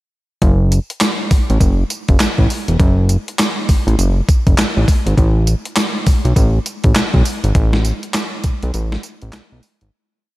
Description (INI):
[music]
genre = R&B, new jack swing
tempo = 101 BPM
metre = 4/4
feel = swing 62% on 16ths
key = unclear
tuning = A4 = 439 Hz
[part]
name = fat analog bass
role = bass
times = 0.4-9.9 s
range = E1 to B1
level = -14 LUFS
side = equal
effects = none
[part]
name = gated 80s digital drum machine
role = drums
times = 0.4-9.9 s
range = handclaps, hi-hat, kick drum, snare drum, tambourine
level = -15 LUFS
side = equal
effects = gated reverb, gated reverb snare, overdrive
[sound]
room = light reverb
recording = none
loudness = -13 LUFS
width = side -18 dB against mid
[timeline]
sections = 0.4-9.9 chorus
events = fade-out 7.5-9.9; break 8.7-9.9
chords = none